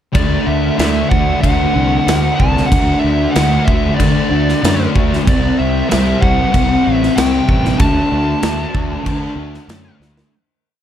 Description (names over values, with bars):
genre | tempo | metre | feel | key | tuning
rock, shoegaze and dream pop | 94 BPM | 4/4 | straight | D mixolydian | A4 = 440 Hz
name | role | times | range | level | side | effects
fuzz lead guitar | melody | 0.1-10.0 s | D5 to A5 | -20 LUFS | equal | distortion, analog delay
thick fuzz guitar | riff | 0.1-10.3 s | C3 to D4 | -16 LUFS | left 1 dB | distortion, analog chorus
fuzz fingered electric bass | bass | 0.1-10.2 s | A1 to D3 | -18 LUFS | equal | overdrive
big rock drum kit | drums | 0.1-10.3 s | crash cymbal, kick drum, snare drum | -18 LUFS | equal | none
room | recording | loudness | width
light reverb, studio ambience | none | -12 LUFS | side -10 dB against mid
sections
0.2-10.3 A section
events
fade-out 7.8-10.3; drum fill 10.0-10.3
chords
0.2 D; 5.3 C5; 7.8 D5